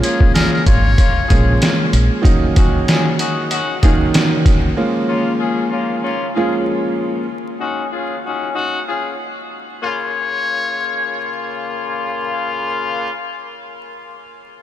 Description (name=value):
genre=hip hop, boom-bap hip-hop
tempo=95 BPM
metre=4/4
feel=swing 55% on 16ths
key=Bb minor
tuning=A4 = 440 Hz
part: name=trumpet with metal mute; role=melody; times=0.0-1.8, 9.8-11.7 s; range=Ab4 to Db5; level=-24 LUFS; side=left 3 dB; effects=analog delay
part: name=warm upright piano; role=accompaniment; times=0.0-7.2 s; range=Eb3 to F4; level=-19 LUFS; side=right 2 dB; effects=cassette tape
part: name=clear horn section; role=stabs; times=0.0-13.1 s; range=Db3 to Ab4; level=-23 LUFS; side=left 3 dB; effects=analog delay
part: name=trip hop sampler-style drum kit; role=drums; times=0.0-4.6 s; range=hi-hat, kick drum, snare drum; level=-15 LUFS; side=equal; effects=none
part: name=deep dub fingered electric bass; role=bass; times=0.7-2.1 s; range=Ab1 to Bb1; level=-14 LUFS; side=equal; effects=none
room=moderate huge ambient reverb, RT60 8.1 s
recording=dreamy mix soaked in reverb, vinyl crackle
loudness=-15 LUFS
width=side -12 dB against mid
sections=0.0-9.8 A section; 9.8-12.4 B section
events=break 4.8-9.8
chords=0.0 Bbm7; 2.2 Gb6; 4.8 Bbm7; 7.3 Dbadd9; 9.8 Bbm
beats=0.35 0.98 1.62 | 2.25 2.88 3.51 4.14 | 4.77 5.41 6.04 6.67 | 7.30 7.93 8.56 9.20 | 9.83 10.46 11.09 11.72